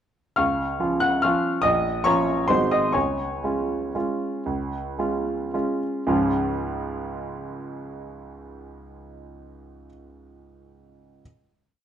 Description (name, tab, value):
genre	classical, piano waltz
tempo	108-151 BPM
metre	3/4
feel	rubato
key	Db major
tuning	A4 = 436 Hz
part	clear baby grand piano	solo	0.4-11.2 s	Ab1 to Gb6	-22 LUFS	equal	none
room	moderate large studio reverb, RT60 1.1 s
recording	dark, warm production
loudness	-22 LUFS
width	side -9 dB against mid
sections	0.4-6.1 A section; 6.1-9.0 final chord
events	slowing down 2.3-6.1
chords	0.4 Db; 1.7 Bbm; 2.5 Ab7; 3.0 Db